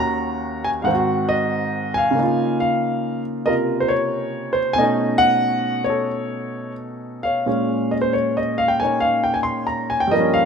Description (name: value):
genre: solo jazz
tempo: 91 BPM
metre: 4/4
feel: swing 68% on 8ths, rubato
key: unclear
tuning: A4 = 438 Hz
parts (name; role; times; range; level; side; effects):
- warm upright piano; solo; 0.0-10.5 s; Eb2 to C6; -18 LUFS; equal; none
room: wet echo chamber reverb, RT60 2.0 s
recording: minimal, uncompressed stereo recording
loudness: -18 LUFS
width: side -6 dB against mid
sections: 0.0-10.5 A section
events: none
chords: 0.0 Ebm7; 0.9 Ab7; 2.2 Db69; 4.8 B9; 7.5 Bbm7